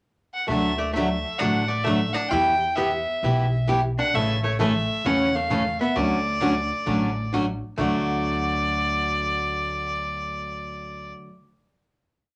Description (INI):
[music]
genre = country, western swing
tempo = 132 BPM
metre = 4/4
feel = swing 65% on 8ths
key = D major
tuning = A4 = 439 Hz
[part]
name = clear fiddle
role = melody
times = 0.3-11.1 s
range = C#5 to G5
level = -28 LUFS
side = equal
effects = none
[part]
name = archtop guitar, miked and amplified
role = second line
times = 0.5-11.1 s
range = A3 to E4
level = -32 LUFS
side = equal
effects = none
[part]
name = picked steel-string acoustic guitar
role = accompaniment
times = 0.5-11.3 s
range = C#3 to A4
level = -28 LUFS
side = equal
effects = none
[part]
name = upright bass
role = bass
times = 0.5-11.1 s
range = A1 to E2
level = -32 LUFS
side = equal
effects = none
[sound]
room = wet club reverb, RT60 0.6 s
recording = none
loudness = -24 LUFS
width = mono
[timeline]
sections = 0.0-0.5 pickup bar; 0.5-7.8 A section; 7.8-11.4 final chord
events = none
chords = 0.5 D; 2.3 Em; 4.1 A; 6.0 Dmaj7; 7.8 D